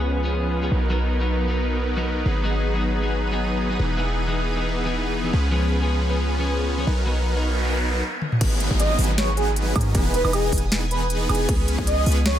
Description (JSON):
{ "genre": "future bass", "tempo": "156 BPM", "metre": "4/4", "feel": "swing 55% on 16ths, half-time", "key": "G# minor", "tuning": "A4 = 439 Hz", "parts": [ { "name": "twelve-string electric guitar", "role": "accompaniment", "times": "0.0-7.9 s", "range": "E3 to A#4", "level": "-29 LUFS", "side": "left 3 dB", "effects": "sidechain pumping, tape echo" }, { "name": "shimmering ambient pad", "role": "sustained chords", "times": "0.0-12.4 s", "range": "B3 to D#6", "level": "-34 LUFS", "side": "right 1 dB", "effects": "chorus, built-in reverb, phaser, sidechain pumping" }, { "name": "supersaw chords", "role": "riff", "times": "0.0-12.4 s", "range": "E3 to D#5", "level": "-26 LUFS", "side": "equal", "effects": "sidechain pumping, low-pass filter, tape echo" }, { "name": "warm 808-style bass", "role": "bass", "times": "0.0-12.4 s", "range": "E1 to G#2", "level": "-23 LUFS", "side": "equal", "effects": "sidechain pumping" }, { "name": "noise sweep and downlifter", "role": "sound effects", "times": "7.4-11.5 s", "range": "none", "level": "-32 LUFS", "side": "equal", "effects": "none" }, { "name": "trap drum kit", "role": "drums", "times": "8.2-12.3 s", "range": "crash cymbal, hi-hat, snare drum, toms, woodblock", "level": "-26 LUFS", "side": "equal", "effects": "overdrive, low-pass filter on hats, low-pass filter on cymbals, low-pass filter on toms, low-pass filter on snare, low-pass filter on perc, low-pass filter on room" }, { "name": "electronic kick drum", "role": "drums", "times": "8.4-11.9 s", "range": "none", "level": "-23 LUFS", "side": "equal", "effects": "none" }, { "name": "breathy flute-like synth lead", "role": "melody", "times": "8.8-12.4 s", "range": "G#4 to D#5", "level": "-26 LUFS", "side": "right 1 dB", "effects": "wide subtle chorus, sidechain pumping, dub echo" } ], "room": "light reverb, digital ambience", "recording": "none", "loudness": "-20 LUFS", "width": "side -11 dB against mid", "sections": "0.0-8.4 A section; 8.4-12.4 B section", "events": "filter sweep on ambient pad 0.0-8.4; noise sweep 7.4-8.4; stop 8.0-8.4; drum fill 8.2; drop 8.4-12.4", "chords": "0.0 C#7; 0.7 Bmaj7; 2.3 G#m7; 3.8 Emaj7; 5.3 C#7; 6.9 Bmaj7; 8.4 G#m7; 9.9 Emaj7; 11.5 C#7" }